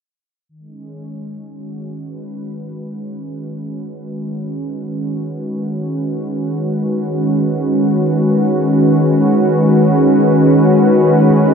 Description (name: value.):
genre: ambient.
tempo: free time.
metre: none.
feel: none.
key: unclear.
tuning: A4 = 441 Hz.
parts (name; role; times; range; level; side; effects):
warm analog pad; sustained chords; 0.5-11.5 s; D#3 to B4; -14 LUFS; equal; chorus.
room: moderate huge ambient reverb, RT60 4.9 s.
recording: dark, warm production.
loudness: -12 LUFS.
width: side -6 dB against mid.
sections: 0.5-11.5 A section.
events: fade-in on analog synth pad 0.5-11.5.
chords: 0.5 B.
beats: free time.